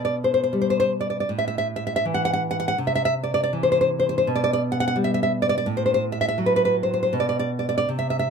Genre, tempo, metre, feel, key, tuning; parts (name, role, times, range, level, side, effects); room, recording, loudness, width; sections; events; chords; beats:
romantic piece for solo classical guitar; 81 BPM; 2/4; rubato; A4 = 440 Hz
nylon-string guitar; solo; 0.0-8.3 s; A2 to F#5; -20 LUFS; equal
light reverb; close, detailed microphones; -20 LUFS; side -6 dB against mid
0.0-8.3 A section
0.0 G/B; 1.3 A5; 2.8 Cadd9; 4.2 G/B; 5.7 Am69; 7.1 N.C.
0.54 | 1.29 2.04 | 2.77 3.50 | 4.24 4.96 | 5.67 6.39 | 7.13 7.89